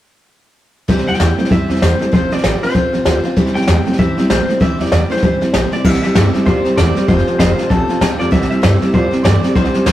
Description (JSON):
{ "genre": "rockabilly", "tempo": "194 BPM", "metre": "4/4", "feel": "swing 60% on 8ths", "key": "C major", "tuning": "A4 = 440 Hz", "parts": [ { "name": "picked steel-string acoustic guitar", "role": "accompaniment", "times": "0.9-9.9 s", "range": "C3 to C5", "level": "-19 LUFS", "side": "left 1 dB", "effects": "none" }, { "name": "electric guitar through a small old amp", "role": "riff", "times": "0.9-9.9 s", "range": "F2 to A3", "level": "-21 LUFS", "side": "right 2 dB", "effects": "spring reverb" }, { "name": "upright bass", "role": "bass", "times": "0.9-9.9 s", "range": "F1 to Bb2", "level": "-18 LUFS", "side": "equal", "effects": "none" }, { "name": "jazz brush drum kit", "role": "drums", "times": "0.9-9.9 s", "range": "crash cymbal, hi-hat, kick drum, snare drum", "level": "-16 LUFS", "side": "equal", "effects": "none" }, { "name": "electric guitar through a small old amp", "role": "melody", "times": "1.1-9.9 s", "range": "A4 to G5", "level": "-21 LUFS", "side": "left 1 dB", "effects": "vibrato effect" } ], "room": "moderate stone room reverb, RT60 1.1 s", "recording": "rough rehearsal-room recording, warm saturation", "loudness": "-12 LUFS", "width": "side -13 dB against mid", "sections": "0.9-5.8 A section; 5.8-9.9 B section", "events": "none", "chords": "0.9 C; 2.1 F; 3.4 C; 7.1 F; 8.3 C" }